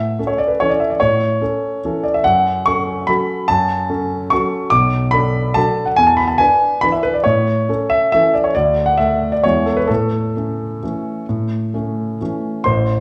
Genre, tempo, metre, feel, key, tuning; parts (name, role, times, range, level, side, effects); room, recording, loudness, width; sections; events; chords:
classical, piano waltz; 127-155 BPM; 3/4; rubato; A major; A4 = 442 Hz
warm grand piano; solo; 0.0-13.0 s; A1 to D6; -17 LUFS; equal
wet recital hall reverb, RT60 1.4 s; small room ambience; -17 LUFS; mono
0.0-12.7 A section
0.0 A; 2.2 F#m; 4.7 Bm7; 6.0 E7; 7.3 A; 8.6 D5; 9.4 E; 9.9 A